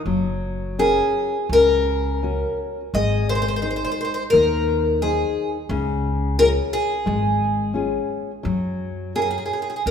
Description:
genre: fado-style ballad.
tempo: 86 BPM.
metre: 4/4.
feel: rubato.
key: F# major.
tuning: A4 = 439 Hz.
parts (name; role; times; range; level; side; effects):
nylon-string guitar; accompaniment; 0.0-9.9 s; C#3 to B#4; -25 LUFS; left 4 dB; none.
upright bass; bass; 0.1-9.9 s; F#1 to F#2; -26 LUFS; equal; none.
picked twelve-string acoustic guitar; melody; 0.8-9.9 s; G#4 to D#5; -20 LUFS; left 1 dB; none.
room: moderate concert hall reverb, RT60 2.5 s.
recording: minimal, uncompressed stereo recording.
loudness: -19 LUFS.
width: side -7 dB against mid.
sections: 0.1-9.9 A section.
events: none.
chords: 0.1 F#; 2.9 G#; 5.7 C#; 8.4 F#.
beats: | 0.06 0.78 1.50 2.22 | 2.93 3.63 4.33 5.02 | 5.70 6.38 7.06 7.75 | 8.44 9.15 9.86.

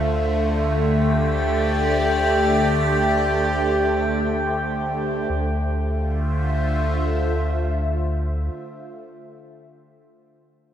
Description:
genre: ambient.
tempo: free time.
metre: none.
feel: none.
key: D minor.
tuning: A4 = 440 Hz.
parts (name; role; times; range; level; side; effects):
evolving wavetable pad; sustained chords; 0.0-8.5 s; D3 to E5; -22 LUFS; equal; phaser, built-in reverb.
warm sub bass; bass; 0.0-8.5 s; D2; -25 LUFS; equal; tube saturation.
drifting glass-harmonics texture; texture; 1.0-5.3 s; G4 to G5; -25 LUFS; equal; chorus, built-in reverb.
room: wet concert hall reverb, RT60 2.1 s.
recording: none.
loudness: -19 LUFS.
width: side -10 dB against mid.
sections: 0.0-5.3 A section; 5.3-7.7 B section.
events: none.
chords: 0.0 Dm7.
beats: free time.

